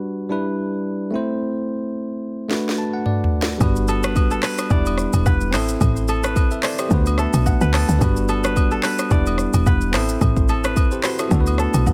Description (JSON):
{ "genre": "afrobeats", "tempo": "109 BPM", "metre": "4/4", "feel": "swing 55% on 16ths", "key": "G major", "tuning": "A4 = 439 Hz", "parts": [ { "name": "bell-like tine electric piano", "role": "accompaniment", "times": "0.0-11.9 s", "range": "G3 to A5", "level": "-25 LUFS", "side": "equal", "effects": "none" }, { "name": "afro-pop drum kit", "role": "drums", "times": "2.5-11.9 s", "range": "handclaps, hi-hat, kick drum, rim click, shaker, snare drum, toms", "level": "-23 LUFS", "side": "equal", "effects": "none" }, { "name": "woody log drum bass", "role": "bass", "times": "3.6-11.9 s", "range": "E1 to D2", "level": "-22 LUFS", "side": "equal", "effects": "none" }, { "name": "agogo bells and woodblock", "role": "percussion", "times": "3.6-11.9 s", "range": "none", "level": "-33 LUFS", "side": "equal", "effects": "none" }, { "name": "kora", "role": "riff", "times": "3.9-11.9 s", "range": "A4 to D5", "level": "-30 LUFS", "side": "equal", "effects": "digital delay" } ], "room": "little or no reverb", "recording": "none", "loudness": "-20 LUFS", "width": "mono", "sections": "0.0-3.6 A section; 3.6-11.9 B section", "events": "tine electric piano fill 2.5-3.6, 6.9-8.0; drum fill 2.5-3.6", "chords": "0.3 Em7; 1.1 Am; 2.5 D6; 3.6 Gmaj7; 4.7 Em7; 5.5 Am; 6.9 D6; 8.0 Gmaj7; 9.1 Em7; 9.9 Am; 11.3 D6" }